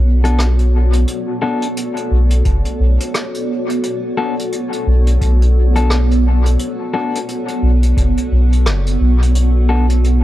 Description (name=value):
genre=ambient dub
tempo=87 BPM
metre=4/4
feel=swing 59% on 16ths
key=B minor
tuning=A4 = 436 Hz
part: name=granular cloud pad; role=sustained chords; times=0.0-10.2 s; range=B3 to D5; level=-20 LUFS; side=equal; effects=built-in reverb
part: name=soft dub sub bass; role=bass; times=0.0-10.2 s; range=F#1 to B1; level=-12 LUFS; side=equal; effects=none
part: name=clean electric guitar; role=stabs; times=0.2-9.9 s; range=B3 to A4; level=-23 LUFS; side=left 4 dB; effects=dub echo
part: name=vintage brush drum kit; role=drums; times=0.2-10.2 s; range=hi-hat, rim click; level=-25 LUFS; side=equal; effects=dub echo
part: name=electronic kick drum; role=drums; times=2.5-8.1 s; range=none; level=-19 LUFS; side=equal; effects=none
room=small room reverb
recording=echo-heavy mix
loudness=-13 LUFS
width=side -14 dB against mid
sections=0.0-10.2 A section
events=none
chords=0.0 Bm7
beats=0.39 | 1.08 1.77 2.46 3.15 | 3.83 4.53 5.21 5.90 | 6.59 7.28 7.97 8.66 | 9.35 10.04